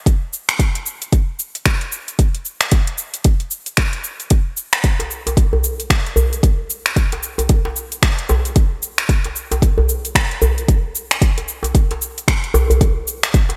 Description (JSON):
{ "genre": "downtempo", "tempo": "113 BPM", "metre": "4/4", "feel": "swing 60% on 16ths", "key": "none", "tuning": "none", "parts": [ { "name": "deep house drum kit", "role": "drums", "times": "0.1-13.6 s", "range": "cabasa, finger snaps, hi-hat", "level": "-22 LUFS", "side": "equal", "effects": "overdrive" }, { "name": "electronic kick drum", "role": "drums", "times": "0.1-13.5 s", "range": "none", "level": "-17 LUFS", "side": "equal", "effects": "overdrive" }, { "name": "djembe", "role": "percussion", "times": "5.0-13.6 s", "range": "none", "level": "-21 LUFS", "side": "equal", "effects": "none" } ], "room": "light reverb", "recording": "bright 1980s-style digital production", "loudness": "-18 LUFS", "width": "mono", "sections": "0.0-13.6 A section", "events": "none", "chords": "none" }